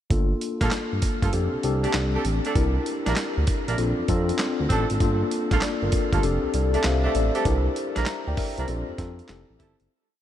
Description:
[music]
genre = R&B, new jack swing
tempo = 98 BPM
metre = 4/4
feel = swing 66% on 16ths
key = G dorian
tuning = A4 = 440 Hz
[part]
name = mellow tine electric piano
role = accompaniment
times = 0.1-9.9 s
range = Bb3 to Bb5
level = -26 LUFS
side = left 3 dB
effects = medium stereo tremolo
[part]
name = smooth synth bass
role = bass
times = 0.1-9.9 s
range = F1 to F2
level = -25 LUFS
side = equal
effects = none
[part]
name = dusty soul sampler-style drum kit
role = drums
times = 0.1-9.9 s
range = handclaps, hi-hat, kick drum, snare drum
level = -27 LUFS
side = right 1 dB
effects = none
[part]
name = mellow horn section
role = stabs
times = 0.6-9.8 s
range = A3 to Bb4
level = -31 LUFS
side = right 4 dB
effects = analog delay
[sound]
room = moderate huge ambient reverb, RT60 8.8 s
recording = dreamy mix soaked in reverb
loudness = -22 LUFS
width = side -11 dB against mid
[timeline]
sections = 0.1-9.9 verse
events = fade-out 7.5-9.9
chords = 0.1 Gm9; 1.3 F69; 2.6 C9; 3.8 Bbmaj9; 5.0 Gm9; 6.2 F69; 7.5 C9; 8.7 Bbmaj9; 9.3 Fmaj9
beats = | 0.11 0.72 1.33 1.94 | 2.56 3.17 3.78 4.39 | 5.00 5.62 6.23 6.84 | 7.45 8.07 8.68 9.29

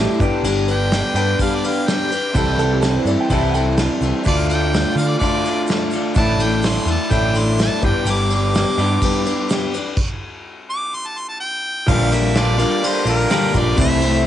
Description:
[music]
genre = folk rock and heartland rock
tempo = 126 BPM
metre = 4/4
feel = straight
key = unclear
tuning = A4 = 440 Hz
[part]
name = warm upright piano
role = second line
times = 0.0-3.8 s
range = G4 to G5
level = -24 LUFS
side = right 7 dB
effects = none
[part]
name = picked steel-string acoustic guitar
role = accompaniment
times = 0.0-14.3 s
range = A2 to B4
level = -24 LUFS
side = left 6 dB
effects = none
[part]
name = tonewheel organ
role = sustained chords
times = 0.0-14.3 s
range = A4 to D6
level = -32 LUFS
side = equal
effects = none
[part]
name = electric guitar through a small old amp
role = riff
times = 0.0-14.3 s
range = G2 to A4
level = -20 LUFS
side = right 1 dB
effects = wide subtle chorus
[part]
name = picked electric bass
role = bass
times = 0.0-9.0, 11.9-14.3 s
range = G1 to D3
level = -20 LUFS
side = equal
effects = none
[part]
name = soft brush drum kit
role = drums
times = 0.2-14.1 s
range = crash cymbal, kick drum, ride cymbal, snare drum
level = -22 LUFS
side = equal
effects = none
[part]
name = tube shaker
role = percussion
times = 0.2-14.2 s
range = none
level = -39 LUFS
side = right 10 dB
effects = none
[part]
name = bright harmonica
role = melody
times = 0.7-14.2 s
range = Bb4 to D6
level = -23 LUFS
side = equal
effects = cassette tape, analog delay
[sound]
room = light reverb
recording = home recording on cassette, nothing above 10.3 kHz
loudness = -16 LUFS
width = side -11 dB against mid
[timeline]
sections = 0.0-11.9 A section; 11.9-14.3 B section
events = harmonica solo 0.0-11.9; stop 10.0-11.9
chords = 0.2 G; 2.4 C6; 4.3 Dm; 6.2 Asus4; 7.8 G; 10.0 N.C.; 11.9 Bb6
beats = | 0.45 0.92 1.40 1.88 | 2.35 2.83 3.31 3.78 | 4.26 4.73 5.21 5.68 | 6.16 6.64 7.11 7.59 | 8.07 8.54 9.02 9.49 | 9.97 10.45 10.92 11.40 | 11.87 12.35 12.82 13.30 | 13.77 14.25

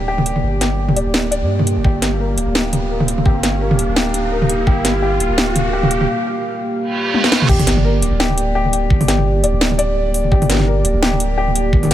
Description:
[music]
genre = half-time drum and bass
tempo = 170 BPM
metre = 4/4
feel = swing 56% on 16ths, half-time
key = G minor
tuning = A4 = 440 Hz
[part]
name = dark analog pad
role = sustained chords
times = 0.0-11.9 s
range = Bb3 to F5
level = -21 LUFS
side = right 2 dB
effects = chorus, sidechain pumping
[part]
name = felt-muted upright piano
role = arpeggios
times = 0.0-11.9 s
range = G4 to D5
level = -23 LUFS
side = left 3 dB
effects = ping-pong delay
[part]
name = long sustained 808-style bass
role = bass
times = 0.0-11.9 s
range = D1 to G2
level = -19 LUFS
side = equal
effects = none
[part]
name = riser, reverse cymbal and sub drop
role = sound effects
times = 0.8-8.9 s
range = none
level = -26 LUFS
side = right 2 dB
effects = none
[part]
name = drum and bass drum kit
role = drums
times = 0.2-11.9 s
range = crash cymbal, hi-hat, snare drum, toms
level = -18 LUFS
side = equal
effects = none
[part]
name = electronic kick drum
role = drums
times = 1.8-4.7, 7.5-11.8 s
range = none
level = -15 LUFS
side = equal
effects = none
[sound]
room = light reverb, digital ambience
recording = none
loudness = -14 LUFS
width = side -12 dB against mid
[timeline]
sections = 0.0-7.5 A section; 7.5-11.9 B section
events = build-up 0.0-7.5; riser 0.8-6.1; reverse cymbal 6.9-7.5; drum fill 7.1-7.5; drop 7.5-11.9; impact 7.5-8.9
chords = 0.0 Gm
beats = 0.08 | 0.43 0.79 1.14 1.49 | 1.85 2.20 2.55 2.90 | 3.26 3.61 3.96 4.32 | 4.67 5.02 5.38 5.73 | 6.08 6.43 6.79 7.14 | 7.49 7.85 8.20 8.55 | 8.90 9.26 9.61 9.96 | 10.32 10.67 11.02 11.38 | 11.73

